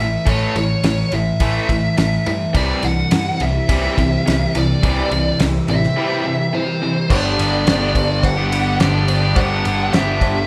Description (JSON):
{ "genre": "classic rock", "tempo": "105 BPM", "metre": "4/4", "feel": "straight", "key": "unclear", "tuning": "A4 = 440 Hz", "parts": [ { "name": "fuzz lead guitar", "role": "melody", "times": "0.0-10.5 s", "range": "C5 to F#5", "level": "-24 LUFS", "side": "equal", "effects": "distortion" }, { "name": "overdriven electric guitar", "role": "riff", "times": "0.0-10.4 s", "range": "G2 to G4", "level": "-25 LUFS", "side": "equal", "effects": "none" }, { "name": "tight distorted guitar", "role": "riff", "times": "0.0-7.1 s", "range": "A2 to A3", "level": "-24 LUFS", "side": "equal", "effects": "distortion" }, { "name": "picked electric bass", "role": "bass", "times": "0.0-10.5 s", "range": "G1 to G2", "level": "-24 LUFS", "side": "equal", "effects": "none" }, { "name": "damped 70s drum kit", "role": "drums", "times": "0.3-10.4 s", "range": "crash cymbal, kick drum, ride cymbal, snare drum", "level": "-24 LUFS", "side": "equal", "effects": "none" }, { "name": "string machine, full ensemble", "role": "sustained chords", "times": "2.6-10.5 s", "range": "B3 to E5", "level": "-30 LUFS", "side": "equal", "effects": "ensemble chorus" }, { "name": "fuzz guitar", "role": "riff", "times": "7.1-10.5 s", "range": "G2 to G3", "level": "-24 LUFS", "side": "equal", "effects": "distortion" }, { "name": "cowbell", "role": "percussion", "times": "7.1-10.4 s", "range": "none", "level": "-32 LUFS", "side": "equal", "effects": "none" } ], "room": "light reverb", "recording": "band playing live in one room", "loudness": "-17 LUFS", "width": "mono", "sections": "0.0-7.1 A section; 7.1-10.5 B section", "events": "none", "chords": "0.0 A; 2.6 C; 7.1 G" }